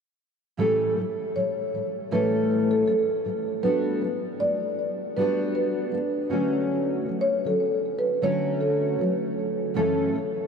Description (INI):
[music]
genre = acoustic pop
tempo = 78 BPM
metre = 4/4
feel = swing 55% on 16ths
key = unclear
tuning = A4 = 440 Hz
[part]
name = marimba with soft mallets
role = melody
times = 0.6-10.5 s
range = A4 to D5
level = -25 LUFS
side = equal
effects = ping-pong delay
[part]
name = fingerpicked steel-string acoustic guitar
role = accompaniment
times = 0.6-10.5 s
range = F#2 to A4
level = -26 LUFS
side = equal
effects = double-tracked left and right
[sound]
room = wet huge ambient reverb, RT60 8.8 s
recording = dreamy mix soaked in reverb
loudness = -23 LUFS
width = side -6 dB against mid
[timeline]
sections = 0.6-10.5 A section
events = none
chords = 0.6 A7; 3.6 Gmaj7; 6.3 Dmaj7; 9.8 F#m7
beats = | 0.57 1.34 2.10 2.87 | 3.63 4.39 5.16 5.93 | 6.69 7.46 8.22 8.99 | 9.76